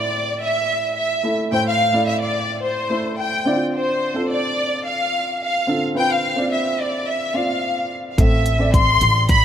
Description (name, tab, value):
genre	piano-driven pop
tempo	108 BPM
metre	4/4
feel	straight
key	A minor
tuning	A4 = 440 Hz
part	rich studio violin section	melody	0.0-9.4 s	C5 to C6	-20 LUFS	left 1 dB	none
part	warm upright piano	accompaniment	0.0-9.4 s	A2 to E5	-24 LUFS	right 1 dB	none
part	upright bass	bass	8.2-9.4 s	A1	-18 LUFS	equal	none
part	deep house drum kit	drums	8.2-9.4 s	hi-hat, kick drum	-17 LUFS	equal	none
room	moderate lush hall reverb, RT60 2.4 s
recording	rough home demo mix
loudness	-17 LUFS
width	side -9 dB against mid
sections	0.0-9.4 A section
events	none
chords	0.0 Am; 3.5 Dm7; 8.2 Am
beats	0.40 0.96 | 1.51 2.07 2.62 3.18 | 3.74 4.29 4.85 5.40 | 5.96 6.51 7.07 7.62 | 8.18 8.74 9.29